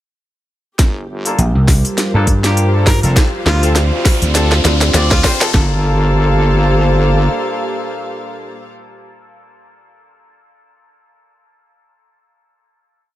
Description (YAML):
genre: glitch hop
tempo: 101 BPM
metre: 4/4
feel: swing 56% on 16ths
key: G minor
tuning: A4 = 440 Hz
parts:
  - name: dark analog pad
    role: sustained chords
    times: 1.2-8.7 s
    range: G3 to F5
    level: -24 LUFS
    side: equal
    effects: chorus, sidechain pumping
  - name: wobble bass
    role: bass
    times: 0.8-7.3 s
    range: G1 to D2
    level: -15 LUFS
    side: equal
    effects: chorus, tube saturation, high-pass filter
  - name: drum and bass drum kit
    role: drums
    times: 0.8-5.7 s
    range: kick drum, snare drum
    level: -13 LUFS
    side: equal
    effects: small room reverb
  - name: drum and bass drum kit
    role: drums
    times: 0.8-5.5 s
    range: hi-hat, snare drum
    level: -17 LUFS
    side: equal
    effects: small room reverb
  - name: riser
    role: sound effects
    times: 2.6-5.5 s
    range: none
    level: -23 LUFS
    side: left 2 dB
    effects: none
  - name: dark studio string section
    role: texture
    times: 0.8-8.7 s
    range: G4 to F5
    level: -24 LUFS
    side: left 1 dB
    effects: sidechain pumping
  - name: mellow horn section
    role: stabs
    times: 1.3-8.7 s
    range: Bb3 to D5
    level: -21 LUFS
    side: left 1 dB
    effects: sidechain pumping, low-pass filter, dub echo
  - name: vintage slap bass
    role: bass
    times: 1.4-5.2 s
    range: F1 to G2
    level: -13 LUFS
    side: equal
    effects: none
  - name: clear harmonica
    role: melody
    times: 2.9-5.6 s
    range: F4 to Bb4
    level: -27 LUFS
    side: equal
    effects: none
room: light reverb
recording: none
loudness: -11 LUFS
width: side -14 dB against mid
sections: 0.8-5.5 build; 5.5-7.9 final chord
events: build-up 0.8-5.5; drum fill 0.8-5.5; filter sweep on horn section 0.8-5.5; riser 2.6-5.5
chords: 0.8 Gm7; 3.2 Dm7; 5.5 Gm7